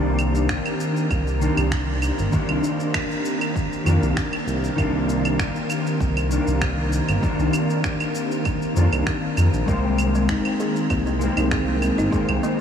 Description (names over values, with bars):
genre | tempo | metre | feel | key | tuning
organic downtempo | 98 BPM | 4/4 | straight | C minor | A4 = 440 Hz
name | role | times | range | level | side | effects
mellow electric guitar | accompaniment | 0.0-12.6 s | Eb3 to D4 | -25 LUFS | left 3 dB | ensemble chorus, sidechain pumping, tape echo
airy breathy pad | sustained chords | 0.0-12.6 s | Eb3 to Bb4 | -27 LUFS | right 2 dB | chorus, sidechain pumping
smooth synth bass | bass | 0.0-12.4 s | G1 to F2 | -22 LUFS | equal | sidechain pumping
electronic claves, shaker and finger snaps | drums | 0.2-12.6 s | none | -28 LUFS | right 2 dB | overdrive
electronic kick drum | drums | 0.5-12.3 s | none | -27 LUFS | equal | overdrive
kalimba | arpeggios | 9.7-12.6 s | Bb3 to Ab4 | -25 LUFS | equal | tape echo
room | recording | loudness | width
moderate huge ambient reverb, RT60 7.4 s | dreamy mix soaked in reverb, small room ambience | -19 LUFS | side -8 dB against mid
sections
0.0-12.6 A section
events
none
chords
0.0 Cm7; 9.7 Abadd9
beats
0.50 1.11 1.72 | 2.33 2.94 3.56 4.17 | 4.78 5.39 6.01 6.62 | 7.23 7.84 8.46 9.07 | 9.68 10.29 10.90 11.52 | 12.13